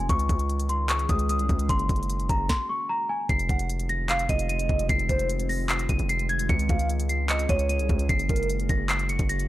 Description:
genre	hip hop, trap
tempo	150 BPM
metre	4/4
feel	half-time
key	F phrygian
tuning	A4 = 440 Hz
part	worn celesta	melody	0.0-9.5 s	Ab5 to Eb7	-29 LUFS	left 1 dB	low-pass filter, analog delay
part	glassy FM pad	sustained chords	0.0-9.5 s	Db3 to Ab4	-35 LUFS	left 1 dB	ensemble chorus, built-in reverb
part	distorted 808-style bass	bass	0.0-9.5 s	F1 to Db2	-27 LUFS	equal	distortion
part	trap drum kit	drums	0.1-9.5 s	handclaps, hi-hat, kick drum, snare drum	-27 LUFS	equal	none
part	hollow clarinet-like synth lead	second line	3.5-8.5 s	Bb4 to Gb5	-31 LUFS	right 2 dB	chorus, phaser, analog delay
room	little or no reverb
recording	dry, gritty hardware recording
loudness	-23 LUFS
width	side -15 dB against mid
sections	0.0-3.3 A section; 3.3-9.5 B section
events	none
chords	0.1 Dbsus2; 1.7 Gbadd9; 3.3 Fm7; 6.5 Dbsus2; 8.1 Gbadd9

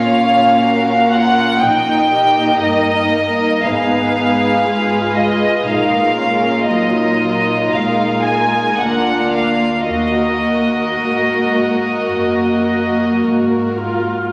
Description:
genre	classical, slow romantic movement for string orchestra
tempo	52-61 BPM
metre	4/4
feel	rubato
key	Eb minor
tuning	A4 = 439 Hz
part	rich studio violin section	melody	0.0-13.2 s	Eb5 to Ab5	-18 LUFS	equal	none
part	warm chamber violin section	second line	0.0-14.1 s	Eb4 to Eb5	-23 LUFS	equal	none
part	dark chamber viola section	accompaniment	0.0-14.3 s	Gb3 to Gb4	-20 LUFS	equal	none
part	dark chamber double bass section	bass	0.0-11.0 s	Ab1 to Eb2	-37 LUFS	equal	none
part	rich studio cello section	bass	0.0-14.3 s	D2 to Bb2	-27 LUFS	equal	none
room	wet concert hall reverb, RT60 1.9 s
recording	vinyl crackle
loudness	-15 LUFS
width	mono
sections	0.0-14.3 A section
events	none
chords	0.0 Bbm; 1.6 Eb/Bb; 3.6 Abm; 5.7 Ebm/Bb; 7.7 Bb7; 9.9 Ebm

